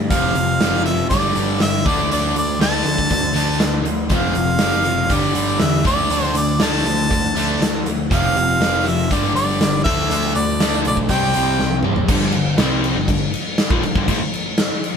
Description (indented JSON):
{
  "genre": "hard rock",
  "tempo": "120 BPM",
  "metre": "4/4",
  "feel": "straight",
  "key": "unclear",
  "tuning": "A4 = 440 Hz",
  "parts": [
    { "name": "distorted electric guitar", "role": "riff", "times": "0.0-12.1 s", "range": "F2 to D4", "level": "-25 LUFS", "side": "right 5 dB", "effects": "overdrive" },
    { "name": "sludgy distorted guitar", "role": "riff", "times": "0.0-14.2 s", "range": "F2 to D4", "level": "-25 LUFS", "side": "left 7 dB", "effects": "overdrive" },
    { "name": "growling picked electric bass", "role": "bass", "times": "0.0-14.2 s", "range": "F1 to E2", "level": "-25 LUFS", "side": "equal", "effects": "overdrive" },
    { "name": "clear harmonica", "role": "melody", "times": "0.1-11.8 s", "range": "D5 to A5", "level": "-21 LUFS", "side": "equal", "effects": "none" },
    { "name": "crunchy overdriven guitar", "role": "riff", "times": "0.1-14.2 s", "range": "F2 to D4", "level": "-24 LUFS", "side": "right 1 dB", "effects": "none" },
    { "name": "huge arena drum kit", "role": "drums", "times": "0.1-15.0 s", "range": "crash cymbal, hi-hat, kick drum, snare drum, toms", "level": "-20 LUFS", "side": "equal", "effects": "none" }
  ],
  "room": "moderate stone room reverb, RT60 1.0 s",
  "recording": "band playing live in one room",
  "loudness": "-15 LUFS",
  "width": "side -7 dB against mid",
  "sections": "0.0-12.1 A section; 12.1-15.0 B section",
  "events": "drum fill 11.6-12.1",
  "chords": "0.1 F5; 1.1 G5; 1.9 D5; 4.1 F5; 5.1 G5; 5.9 D5; 8.1 F5; 9.1 G5; 9.9 D5; 11.1 C5; 12.1 G5",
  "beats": "| 0.11 0.61 1.11 1.61 | 2.11 2.61 3.11 3.61 | 4.11 4.61 5.11 5.61 | 6.11 6.61 7.11 7.61 | 8.11 8.61 9.11 9.61 | 10.11 10.60 11.10 11.60 | 12.10 12.60 13.10 13.60 | 14.09 14.59"
}